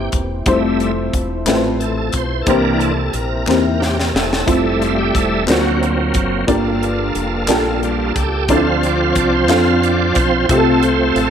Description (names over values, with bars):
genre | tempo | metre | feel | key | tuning
slow gospel | 60 BPM (dotted quarters) | 6/8 | straight | F major | A4 = 440 Hz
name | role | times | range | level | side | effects
dark upright piano | accompaniment | 0.0-11.3 s | G2 to F5 | -18 LUFS | left 2 dB | ensemble chorus
bright tonewheel organ | sustained chords | 0.0-11.3 s | E3 to F5 | -18 LUFS | right 2 dB | slow rotary speaker, chorus vibrato
deep dub fingered electric bass | bass | 0.0-11.3 s | E1 to F2 | -22 LUFS | equal | none
tight funk drum kit | drums | 0.1-11.3 s | hi-hat, kick drum, snare drum | -21 LUFS | equal | none
group handclap | percussion | 1.5-9.8 s | none | -28 LUFS | left 5 dB | none
room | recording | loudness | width
moderate plate reverb, RT60 2.3 s | dreamy mix soaked in reverb | -14 LUFS | side -8 dB against mid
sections
0.0-11.3 A section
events
tonewheel organ solo 0.0-11.3; drum fill 3.5-4.5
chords
0.5 Fmaj7; 2.5 C7; 4.5 Fmaj7; 5.5 D7alt; 6.5 Gm7; 8.5 Dm7; 10.5 F/C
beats
| 0.46 1.47 | 2.47 3.48 | 4.48 5.48 | 6.49 7.49 | 8.49 9.49 | 10.50